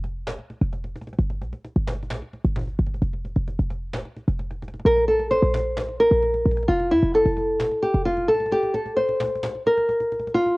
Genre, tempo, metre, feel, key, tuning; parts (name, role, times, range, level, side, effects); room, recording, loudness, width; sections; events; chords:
hip hop, trap; 131 BPM; 4/4; half-time; F major; A4 = 439 Hz
short 808-style bass; bass; 0.0-8.3 s; F1 to F2; -24 LUFS; equal
cajon; drums; 0.0-10.5 s; -35 LUFS; equal; cassette tape
nylon-string guitar; melody; 4.9-10.6 s; E4 to C5; -20 LUFS; equal; low-pass filter, cassette tape
light reverb, small room ambience; home recording on cassette; -20 LUFS; side -24 dB against mid
0.0-10.6 A section
break 0.0-4.9, 8.5-10.3; kick muted 10.3
0.0 N.C.; 4.9 Bbsus2; 6.7 F; 8.5 N.C.